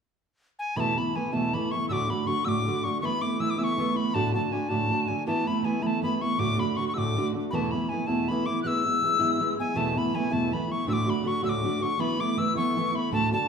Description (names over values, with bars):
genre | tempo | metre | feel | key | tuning
celtic folk, Celtic jig | 107 BPM (dotted quarters) | 6/8 | straight | E mixolydian | A4 = 439 Hz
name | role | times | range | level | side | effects
bright mid whistle | melody | 0.6-13.5 s | G#5 to F#6 | -28 LUFS | left 3 dB | none
fingerpicked steel-string acoustic guitar | accompaniment | 0.8-13.5 s | D2 to F#4 | -26 LUFS | right 2 dB | none
room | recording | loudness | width
wet large studio reverb, RT60 1.3 s | band playing live in one room | -24 LUFS | side -6 dB against mid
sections
0.8-9.8 A section; 9.8-13.5 A section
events
none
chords
0.0 N.C.; 0.8 Esus4; 1.9 D; 3.0 Esus4; 4.1 D; 5.3 Esus4; 6.4 D; 7.5 Esus4; 8.6 E; 9.8 Esus4; 10.9 D; 12.0 Esus4